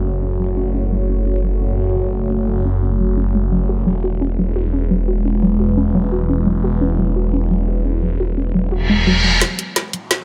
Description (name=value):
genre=dark technical drum and bass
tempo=173 BPM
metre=4/4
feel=straight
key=F# minor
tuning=A4 = 440 Hz
part: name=deep dark ambient pad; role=sustained chords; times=0.0-10.2 s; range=G#3 to C#5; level=-25 LUFS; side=equal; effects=chorus, built-in reverb
part: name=warbly dusty pluck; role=arpeggios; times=0.0-10.2 s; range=F#3 to F#4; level=-24 LUFS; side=equal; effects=chorus, tape echo
part: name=phased detuned saw bass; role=bass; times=0.0-9.4 s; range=E1 to F#1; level=-21 LUFS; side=equal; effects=phaser, overdrive
part: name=reverse cymbal and riser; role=sound effects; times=8.8-10.2 s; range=none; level=-21 LUFS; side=equal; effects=none
part: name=drum and bass drum kit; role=drums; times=9.4-10.2 s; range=hi-hat, snare drum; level=-20 LUFS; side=equal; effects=high-pass filter on hats, low-pass filter on hats, high-pass filter on snare, low-pass filter on snare, high-pass filter on room, low-pass filter on room
room=light reverb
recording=none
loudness=-18 LUFS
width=mono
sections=0.0-9.4 A section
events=filter sweep on synth arpeggio sound 0.0-9.4; reverse cymbal 8.8-9.4; drum fill 9.4-10.2; riser 9.4-10.2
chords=0.0 F#m; 3.9 E; 9.4 F#m